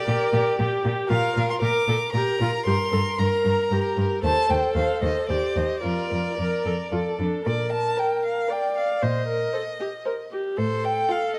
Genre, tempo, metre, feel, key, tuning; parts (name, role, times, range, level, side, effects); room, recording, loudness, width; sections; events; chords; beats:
quick classical-period movement for string quartet; 115 BPM; 3/4; straight; Bb major; A4 = 441 Hz
warm violin; melody; 0.0-11.4 s; C5 to D6; -30 LUFS; equal
warm violin; second line; 0.0-11.4 s; F4 to C5; -31 LUFS; equal
dark viola; accompaniment; 0.0-11.4 s; D4 to D5; -29 LUFS; equal
clear cello; bass; 0.1-11.0 s; Eb2 to Bb2; -29 LUFS; equal
moderate scoring stage reverb, RT60 1.7 s; -24 LUFS; mono
0.0-7.5 A section; 7.5-11.4 B section
0.0 Gm/Bb; 1.1 Bb; 2.7 Gm; 4.2 Cm/Eb; 5.8 Bb/F; 6.9 F; 7.5 Bb; 9.0 Cm7/Bb; 10.6 F/A
0.07 0.59 | 1.10 1.62 2.14 | 2.66 3.19 3.71 | 4.24 4.76 5.29 | 5.84 6.38 6.92 | 7.46 7.98 8.50 | 9.02 9.54 10.06 | 10.58 11.10